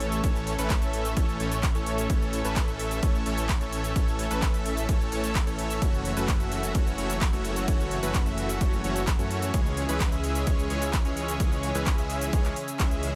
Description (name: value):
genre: EDM, festival progressive house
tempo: 129 BPM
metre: 4/4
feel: straight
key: A major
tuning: A4 = 440 Hz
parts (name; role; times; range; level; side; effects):
- lush unison pad; sustained chords; 0.0-13.2 s; C#3 to E5; -38 LUFS; equal; chorus, sidechain pumping
- supersaw chords; riff; 0.0-13.2 s; E3 to E5; -33 LUFS; equal; sidechain pumping, dub echo
- detuned saw bass; bass; 0.0-13.2 s; F#1 to F#2; -35 LUFS; equal; chorus, tube saturation, sidechain pumping
- big-room dance drum kit; drums; 0.0-13.1 s; handclaps, hi-hat, ride cymbal, shaker; -38 LUFS; equal; none
- electronic kick drum; drums; 0.2-12.9 s; none; -28 LUFS; equal; none
room: little or no reverb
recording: none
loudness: -27 LUFS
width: mono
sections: 0.0-13.2 A section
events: none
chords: 0.0 A; 5.8 F#m7; 9.5 C#m